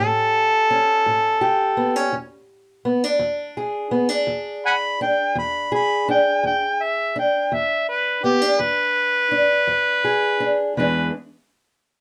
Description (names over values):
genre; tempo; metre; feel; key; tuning
acoustic country blues, solo or duo; 56 BPM (dotted quarters); 12/8; straight; E mixolydian; A4 = 440 Hz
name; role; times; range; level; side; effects
mellow harmonica; melody; 0.0-11.1 s; G4 to B5; -21 LUFS; equal; none
fingerpicked steel-string acoustic guitar; accompaniment; 0.0-11.1 s; E2 to G#4; -24 LUFS; equal; none
room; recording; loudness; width
moderate studio reverb, RT60 0.5 s; dark, warm production; -20 LUFS; mono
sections
0.0-10.8 A section; 10.8-12.0 B section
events
none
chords
0.0 A7; 2.1 E7